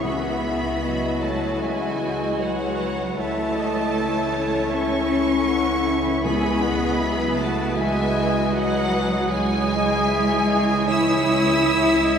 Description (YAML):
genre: cinematic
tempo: 78 BPM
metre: 4/4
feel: rubato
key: C# minor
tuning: A4 = 438 Hz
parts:
  - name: rich studio violin section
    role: melody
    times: 0.0-12.2 s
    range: F#5 to E6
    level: -27 LUFS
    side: left 1 dB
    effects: none
  - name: dark clarinet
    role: second line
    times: 0.0-12.2 s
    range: E4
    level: -29 LUFS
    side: left 5 dB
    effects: none
  - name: mellow cor anglais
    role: second line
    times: 0.0-12.2 s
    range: F#4 to A4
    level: -31 LUFS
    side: right 3 dB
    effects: none
  - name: mellow silver concert flute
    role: second line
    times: 0.0-12.2 s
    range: C#5 to G#5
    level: -30 LUFS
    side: equal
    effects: none
  - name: rich studio violin section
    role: second line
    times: 0.0-12.2 s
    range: F#4 to E5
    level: -32 LUFS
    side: left 2 dB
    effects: none
  - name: dark studio viola section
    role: accompaniment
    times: 0.0-12.2 s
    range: E3 to D#5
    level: -29 LUFS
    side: equal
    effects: none
  - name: dark French horn section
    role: sustained chords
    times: 0.0-12.2 s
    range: F#3 to E4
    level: -26 LUFS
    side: left 2 dB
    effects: none
  - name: clear studio cello section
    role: bass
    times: 0.0-12.2 s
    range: F#3 to E4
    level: -27 LUFS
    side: right 2 dB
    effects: none
  - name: warm studio double bass section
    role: bass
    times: 0.0-12.2 s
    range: C#2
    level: -30 LUFS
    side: right 3 dB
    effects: none
  - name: timpani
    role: percussion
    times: 0.0-1.2, 6.2-7.3 s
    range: C#3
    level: -34 LUFS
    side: left 2 dB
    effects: none
room: wet cathedral reverb, RT60 4.3 s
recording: recorded in a church or concert hall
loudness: -19 LUFS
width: side -7 dB against mid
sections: 0.0-12.2 A section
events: none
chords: 0.0 F#m7/C#; 3.2 A/C#; 6.2 Eadd9/C#; 9.3 C#m